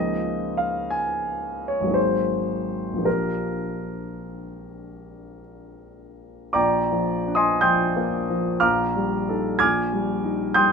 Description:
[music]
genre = classical, impressionist solo piano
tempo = 50-64 BPM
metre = 3/4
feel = rubato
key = Bb mixolydian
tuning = A4 = 442 Hz
[part]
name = warm concert grand piano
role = solo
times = 0.0-10.7 s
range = Ab1 to Ab6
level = -21 LUFS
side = equal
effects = none
[sound]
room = moderate studio reverb, RT60 0.9 s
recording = minimal, uncompressed stereo recording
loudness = -21 LUFS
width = side -5 dB against mid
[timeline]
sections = 0.0-6.5 A section; 6.5-10.7 A section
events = none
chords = 0.0 Db69; 2.0 Ab9; 3.1 Bb6; 8.6 F9/Bb; 9.6 Abmaj7/Bb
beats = 0.93 1.96 | 3.06 4.23 5.40 | 6.55 7.63 8.62 | 9.60 10.55

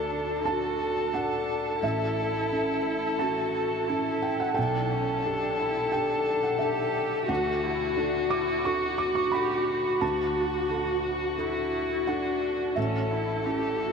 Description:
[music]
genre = neoclassical piano and strings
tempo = 88 BPM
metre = 4/4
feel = rubato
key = D major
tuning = A4 = 441 Hz
[part]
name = muted violin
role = melody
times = 0.0-13.9 s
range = F#4 to A4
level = -28 LUFS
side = left 4 dB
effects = diffuse ambient delay
[part]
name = muted cello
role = second line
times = 0.0-13.9 s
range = C#4 to G4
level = -33 LUFS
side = right 5 dB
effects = none
[part]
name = felt-muted upright piano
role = accompaniment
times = 0.0-13.9 s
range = A1 to D6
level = -30 LUFS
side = right 2 dB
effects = none
[sound]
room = wet huge ambient reverb, RT60 8.4 s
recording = dreamy mix soaked in reverb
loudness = -25 LUFS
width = side -5 dB against mid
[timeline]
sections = 0.0-13.9 A section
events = none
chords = 0.0 D; 1.8 A; 4.6 Gadd9/B; 7.3 D; 12.8 A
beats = 0.47 1.14 | 1.82 2.51 3.21 3.89 | 4.57 5.25 5.93 6.61 | 7.29 7.97 8.65 9.33 | 10.02 10.70 11.39 12.08 | 12.77 13.45

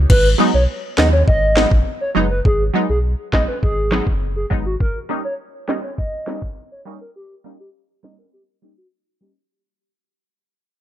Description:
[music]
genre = dancehall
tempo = 102 BPM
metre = 4/4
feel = straight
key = G# minor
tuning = A4 = 440 Hz
[part]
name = sub bass with octave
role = bass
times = 0.0-4.8 s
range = F#1 to D#2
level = -18 LUFS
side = equal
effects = none
[part]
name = hollow clarinet-like synth lead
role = melody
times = 0.1-9.3 s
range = F#4 to D#5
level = -22 LUFS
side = equal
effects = chorus, tape echo
[part]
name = island pop drum kit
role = drums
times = 0.1-8.2 s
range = crash cymbal, kick drum, snare drum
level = -18 LUFS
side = equal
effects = none
[part]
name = punchy chord stab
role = accompaniment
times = 0.4-9.3 s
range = F#3 to D#4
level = -20 LUFS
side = right 1 dB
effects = chorus, phaser, sidechain pumping
[sound]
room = little or no reverb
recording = low-pass filter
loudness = -16 LUFS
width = side -12 dB against mid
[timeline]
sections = 0.1-9.5 A section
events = fade-out 0.1-9.5; filter sweep 0.1-9.5; break 8.3-9.5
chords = 0.1 G#m7; 4.8 D#7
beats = | 0.10 0.69 1.27 1.86 | 2.45 3.04 3.63 4.22 | 4.80 5.39 5.98 6.57 | 7.16 7.75 8.33 8.92

